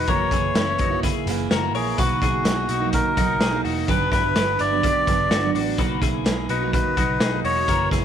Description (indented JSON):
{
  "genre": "jangly indie pop",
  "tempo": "126 BPM",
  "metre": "4/4",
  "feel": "straight",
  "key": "B major",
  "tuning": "A4 = 443 Hz",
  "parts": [
    { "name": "melodica", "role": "melody", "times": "0.0-7.9 s", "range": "F#4 to D5", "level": "-23 LUFS", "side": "left 1 dB", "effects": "slapback echo" },
    { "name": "picked steel-string acoustic guitar", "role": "accompaniment", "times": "0.0-8.0 s", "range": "B2 to E4", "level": "-26 LUFS", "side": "right 13 dB", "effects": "none" },
    { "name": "twelve-string electric guitar", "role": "arpeggios", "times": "0.0-8.0 s", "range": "C#4 to C#5", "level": "-28 LUFS", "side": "left 11 dB", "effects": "spring reverb, slapback echo" },
    { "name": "vintage muted picked electric bass", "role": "bass", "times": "0.0-8.0 s", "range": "E1 to B1", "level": "-28 LUFS", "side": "equal", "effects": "none" },
    { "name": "raw garage drum kit", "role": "drums", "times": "0.1-8.0 s", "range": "hi-hat, kick drum, snare drum", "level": "-24 LUFS", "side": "equal", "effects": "none" }
  ],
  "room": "light reverb, small room ambience",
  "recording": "1960s-style stereo with parts hard left and right",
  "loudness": "-19 LUFS",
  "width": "side -9 dB against mid",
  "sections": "0.0-8.0 A section",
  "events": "none",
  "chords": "0.1 F#7; 2.0 Bmaj7; 3.9 Gmaj7; 5.8 Bmaj7",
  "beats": "| 0.08 0.56 1.03 1.51 | 1.98 2.46 2.94 3.41 | 3.88 4.36 4.83 5.31 | 5.78 6.26 6.73 7.21 | 7.68"
}